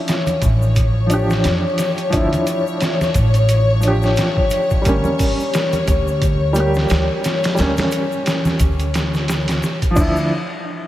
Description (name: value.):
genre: trip hop.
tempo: 88 BPM.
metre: 4/4.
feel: swing 57% on 16ths.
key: D harmonic minor.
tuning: A4 = 440 Hz.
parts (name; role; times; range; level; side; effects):
dark upright piano; accompaniment; 0.0-10.3 s; F3 to G4; -21 LUFS; right 1 dB; tremolo, tape echo.
dark chamber string section; sustained chords; 0.0-10.0 s; C#5; -23 LUFS; left 3 dB; none.
trip hop sampler-style drum kit; drums; 0.1-10.1 s; crash cymbal, hi-hat, kick drum, snare drum; -20 LUFS; equal; none.
tube shaker and congas; percussion; 0.1-10.3 s; none; -27 LUFS; equal; none.
upright bass; bass; 0.4-10.3 s; A1 to F2; -18 LUFS; equal; none.
room: moderate huge ambient reverb, RT60 4.4 s.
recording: dreamy mix soaked in reverb, vinyl crackle.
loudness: -15 LUFS.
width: side -14 dB against mid.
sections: 0.0-10.3 A section.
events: none.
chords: 0.0 Dmadd9; 4.9 Gdim; 10.0 Dmadd9; 10.3 N.C..